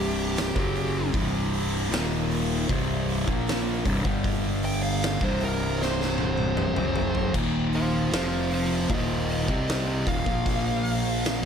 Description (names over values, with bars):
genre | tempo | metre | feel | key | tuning
stoner and doom metal | 77 BPM | 4/4 | straight | unclear | A4 = 441 Hz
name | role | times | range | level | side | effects
fuzz lead guitar | melody | 0.0-11.5 s | G4 to G5 | -31 LUFS | right 2 dB | distortion, analog delay
fuzz guitar | riff | 0.0-11.4 s | C2 to C4 | -26 LUFS | equal | distortion
fingered electric bass | bass | 0.0-11.5 s | C1 to C2 | -30 LUFS | equal | overdrive
oversized low-tuned drum kit | drums | 0.4-11.4 s | crash cymbal, hi-hat, kick drum, snare drum, toms | -29 LUFS | equal | none
room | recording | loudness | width
light reverb | none | -23 LUFS | side -7 dB against mid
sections
0.0-11.5 A section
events
lead electric guitar solo 0.0-11.5; drum fill 5.8-7.4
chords
0.0 C5; 1.9 Eb5; 2.7 C5; 4.1 G5; 5.2 C5; 7.4 Eb5; 8.1 F5; 8.9 Eb5; 10.3 Bb5